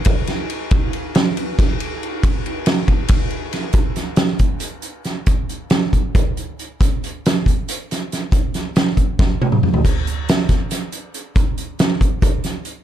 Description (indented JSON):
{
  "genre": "rock",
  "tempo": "276 BPM (eighths)",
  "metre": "7/8",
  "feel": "straight",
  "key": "none",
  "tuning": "none",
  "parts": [
    { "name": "loose indie drum kit", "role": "drums", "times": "0.0-12.8 s", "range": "crash cymbal, hi-hat, kick drum, ride cymbal, snare drum, toms", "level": "-16 LUFS", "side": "equal", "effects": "none" }
  ],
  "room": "little or no reverb",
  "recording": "dark, warm production",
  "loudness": "-16 LUFS",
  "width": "side -11 dB against mid",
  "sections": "0.0-3.8 A section; 3.8-12.8 B section",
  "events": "drum fill 9.2-9.8",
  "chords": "none",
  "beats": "0.07 0.28 0.50 | 0.72 0.93 1.15 1.37 1.58 1.80 2.02 | 2.23 2.45 2.67 2.88 3.10 3.32 3.54 | 3.75 3.97 4.19 4.41 4.62 4.84 5.06 | 5.28 5.50 5.71 5.93 6.15 6.37 6.58 | 6.80 7.02 7.24 7.46 7.67 7.89 8.11 | 8.33 8.54 8.76 8.98 9.20 9.41 9.63 | 9.85 10.06 10.28 10.50 10.71 10.93 11.15 | 11.36 11.58 11.80 12.01 12.23 12.45 12.66"
}